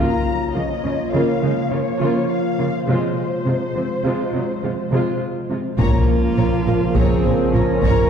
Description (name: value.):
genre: cinematic, hybrid orchestral and electronic film score.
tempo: 103 BPM.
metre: 5/4.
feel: straight.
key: Bb minor.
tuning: A4 = 439 Hz.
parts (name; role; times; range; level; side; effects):
warm symphonic violin section; melody; 0.0-5.2 s; C5 to Bb5; -28 LUFS; left 4 dB; none.
rich studio viola section; accompaniment; 0.0-8.1 s; F3 to F4; -24 LUFS; equal; none.
warbly tape-like pad; sustained chords; 0.1-8.1 s; F3 to Db5; -24 LUFS; equal; chorus, built-in reverb.
rich symphonic cello section; bass; 0.0-7.9 s; Bb2 to Db3; -24 LUFS; right 2 dB; none.
dark cello; melody; 5.8-8.1 s; F4 to Bb4; -24 LUFS; equal; none.
rich symphonic violin section; second line; 5.8-8.1 s; Bb4 to Bb5; -28 LUFS; left 3 dB; none.
bright trombone section; sustained chords; 5.8-8.1 s; Bb2 to F3; -25 LUFS; right 4 dB; none.
mellow French horn section; sustained chords; 5.8-8.1 s; Db3 to Bb4; -25 LUFS; equal; none.
rich symphonic double bass section; bass; 5.8-7.9 s; Bb1; -22 LUFS; right 2 dB; none.
taiko ensemble; drums; 5.8-8.1 s; none; -21 LUFS; left 1 dB; none.
room: wet scoring stage reverb, RT60 2.1 s.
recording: heard from further back in the room.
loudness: -17 LUFS.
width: side -7 dB against mid.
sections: 0.0-5.8 A section; 5.8-8.1 A section.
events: none.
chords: 0.0 Bbm/Db; 2.9 Fm/C; 5.8 Bbm.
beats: 0.55 1.13 1.72 2.30 | 2.88 3.46 4.04 4.63 5.21 | 5.79 6.38 6.96 7.54.